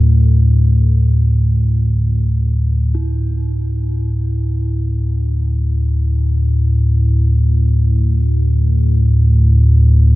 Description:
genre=dark ambient drone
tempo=free time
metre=none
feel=none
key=unclear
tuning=A4 = 440 Hz
part: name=deep rumbling drone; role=drone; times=0.0-10.2 s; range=D2 to A2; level=-12 LUFS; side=equal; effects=built-in reverb, wide subtle chorus
part: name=bronze singing bowl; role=texture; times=2.9-10.2 s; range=E4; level=-33 LUFS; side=right 2 dB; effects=none
room=little or no reverb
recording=dark, warm production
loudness=-12 LUFS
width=side -19 dB against mid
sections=0.0-3.0 A section; 3.0-10.2 B section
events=none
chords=0.0 D5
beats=free time

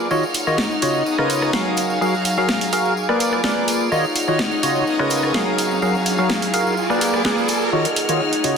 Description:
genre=piano house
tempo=126 BPM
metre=4/4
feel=straight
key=Eb minor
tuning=A4 = 441 Hz
part: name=clear chamber violin section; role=sustained chords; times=0.0-8.6 s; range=Cb4 to F6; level=-27 LUFS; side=equal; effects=none
part: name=percussive organ stab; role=riff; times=0.0-8.6 s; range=Db3 to F5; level=-20 LUFS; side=equal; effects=analog chorus, digital delay
part: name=tambourine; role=percussion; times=0.0-7.7 s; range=none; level=-31 LUFS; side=left 2 dB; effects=none
part: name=airy breathy pad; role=texture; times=0.0-8.6 s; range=Gb3 to Gb5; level=-24 LUFS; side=equal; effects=chorus
part: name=house drum kit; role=drums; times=0.3-8.5 s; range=hi-hat, rim click, snare drum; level=-23 LUFS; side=equal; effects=high-pass filter on hats, high-pass filter on snare, high-pass filter on room
part: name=riser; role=sound effects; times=5.0-8.6 s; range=none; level=-28 LUFS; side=right 2 dB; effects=none
room=moderate lush hall reverb, RT60 1.9 s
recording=dense, heavily limited modern master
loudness=-17 LUFS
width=side -6 dB against mid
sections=0.0-7.7 A section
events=riser 5.0-7.7, 7.7-8.6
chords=0.1 Ebm9; 1.1 Db13; 1.8 Gbmaj9; 3.0 Bb7b9; 3.9 Ebm9; 4.9 Db13; 5.6 Gbmaj9; 6.8 Bb7b9; 7.7 Ebm9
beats=| 0.11 0.58 1.06 1.54 | 2.01 2.49 2.96 3.44 | 3.92 4.39 4.87 5.35 | 5.82 6.30 6.78 7.25 | 7.73 8.20

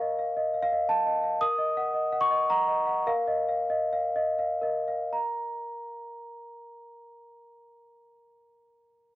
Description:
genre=classical, lullaby for celesta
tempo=77-116 BPM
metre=3/4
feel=straight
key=unclear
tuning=A4 = 441 Hz
part: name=large celesta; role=solo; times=0.0-9.2 s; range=Bb4 to Eb6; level=-26 LUFS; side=equal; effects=none
room=small room ambience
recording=dry, close 1970s-style studio recording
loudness=-25 LUFS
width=side -16 dB against mid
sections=0.0-5.1 A section; 5.1-9.2 B section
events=slowing down 0.6-5.1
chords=0.0 F7/Bb; 1.4 Ebm/Bb; 3.1 Bbsus4; 5.1 Bb5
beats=0.37 0.88 | 1.41 1.94 2.50 | 3.08 3.70 4.38 | 5.13 5.91 6.69 | 7.47 8.26 9.04

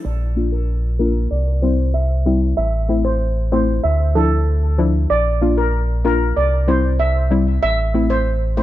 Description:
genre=dancehall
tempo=95 BPM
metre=4/4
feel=straight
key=unclear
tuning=A4 = 440 Hz
part: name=steel pan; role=melody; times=0.0-8.6 s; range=A4 to E5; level=-22 LUFS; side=right 2 dB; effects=low-pass filter, ping-pong delay
part: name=sub bass with octave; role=bass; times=0.0-8.6 s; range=A1 to D2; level=-18 LUFS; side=equal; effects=none
part: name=soft round pluck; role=accompaniment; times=0.4-8.6 s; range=F3 to F4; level=-21 LUFS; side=left 3 dB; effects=chorus, low-pass filter
room=little or no reverb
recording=none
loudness=-15 LUFS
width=side -14 dB against mid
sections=0.0-8.6 A section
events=filter sweep 0.0-8.6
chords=0.0 Bb; 1.3 C; 2.6 Am; 3.8 Dmadd9; 5.1 Bb; 6.4 C; 7.6 Am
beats=| 0.05 0.68 1.31 1.94 | 2.58 3.21 3.84 4.47 | 5.10 5.73 6.37 7.00 | 7.63 8.26

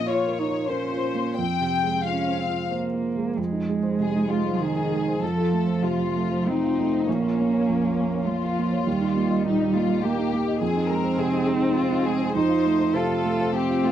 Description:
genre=neoclassical piano and strings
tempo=85-104 BPM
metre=3/4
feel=rubato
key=F minor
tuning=A4 = 440 Hz
part: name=muted symphonic violin section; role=melody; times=0.0-13.9 s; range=Db4 to G5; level=-27 LUFS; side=left 6 dB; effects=slapback echo
part: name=muted cello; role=second line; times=0.0-13.9 s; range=Eb3 to F4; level=-25 LUFS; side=right 3 dB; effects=none
part: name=warm upright piano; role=accompaniment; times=0.0-13.9 s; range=Bb1 to Eb5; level=-26 LUFS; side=right 2 dB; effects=none
room=small room ambience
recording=dry, close 1970s-style studio recording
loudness=-21 LUFS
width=side -10 dB against mid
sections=0.0-3.4 A section; 3.4-13.9 B section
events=none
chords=0.0 Bbm; 1.4 Fm; 3.4 Fm7; 5.2 F; 7.1 Bbm; 8.9 Eb; 10.6 Fm7; 12.4 F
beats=0.07 0.70 | 1.39 2.07 2.73 | 3.38 4.00 4.61 | 5.22 5.82 6.46 | 7.07 7.67 8.28 | 8.87 9.45 10.03 | 10.61 11.19 11.77 | 12.36 12.95 13.54

